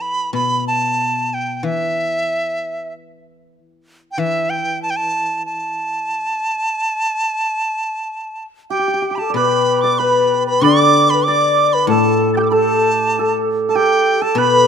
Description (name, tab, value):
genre	chinese traditional, Chinese chamber ensemble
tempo	94 BPM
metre	4/4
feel	rubato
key	A shang mode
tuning	A4 = 440 Hz
part	bright dizi	melody	0.0-14.7 s	E5 to A6	-18 LUFS	right 1 dB	none
part	guzheng	accompaniment	0.0-14.7 s	A2 to E3	-21 LUFS	left 3 dB	none
part	bright reedy low xiao	second line	8.7-14.7 s	G4 to D5	-18 LUFS	left 8 dB	none
part	hammered dulcimer	second line	8.7-14.7 s	G4 to D5	-18 LUFS	right 7 dB	none
room	light reverb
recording	close, detailed microphones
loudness	-15 LUFS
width	side -7 dB against mid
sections	0.0-9.4 A section; 9.4-14.7 B section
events	none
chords	none